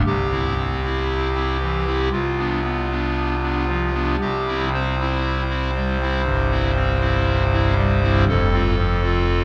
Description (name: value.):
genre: classical, chorale-style piece for pipe organ.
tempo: 58 BPM.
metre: 4/4.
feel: straight.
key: C major.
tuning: A4 = 440 Hz.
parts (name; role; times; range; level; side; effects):
pipe organ, clarinet reed; solo; 0.0-9.4 s; F1 to C5; -21 LUFS; equal; none.
room: wet church reverb, RT60 3.6 s.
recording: dark, warm production.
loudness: -21 LUFS.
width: mono.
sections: 0.0-9.4 A section.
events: none.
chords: 0.1 C; 2.1 Bdim/C; 4.2 C; 8.3 F.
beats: | 0.06 1.10 2.13 3.16 | 4.20 5.23 6.24 7.25 | 8.28 9.30.